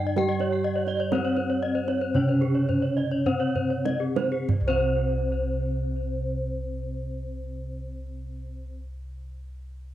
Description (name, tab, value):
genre	Balinese gamelan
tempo	47-67 BPM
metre	4/4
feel	straight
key	C pelog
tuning	A4 = 440 Hz
part	gamelan-type bronze metallophone	melody	0.0-8.8 s	C4 to G4-45c	-29 LUFS	left 1 dB	none
part	gamelan-type bronze metallophone	accompaniment	0.0-8.8 s	C3 to G3-45c	-35 LUFS	right 6 dB	none
part	gamelan-type bronze metallophone	arpeggios	0.0-8.8 s	Ab4-40c to G5-45c	-32 LUFS	right 5 dB	none
part	gamelan-type bossed gongs	bass	0.0-8.7 s	C2 to G4-45c	-30 LUFS	equal	none
part	gamelan-type bronze metallophone	arpeggios	0.1-8.8 s	Ab4-40c to G5-45c	-31 LUFS	left 5 dB	analog delay
part	kendang	percussion	0.2-5.1 s	none	-31 LUFS	right 4 dB	none
room	moderate spring reverb, RT60 1.2 s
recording	home recording on cassette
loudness	-24 LUFS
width	side -13 dB against mid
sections	0.0-4.5 A section; 4.5-9.6 B section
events	slowing down 0.0-4.5; drum fill 3.3-4.5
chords	none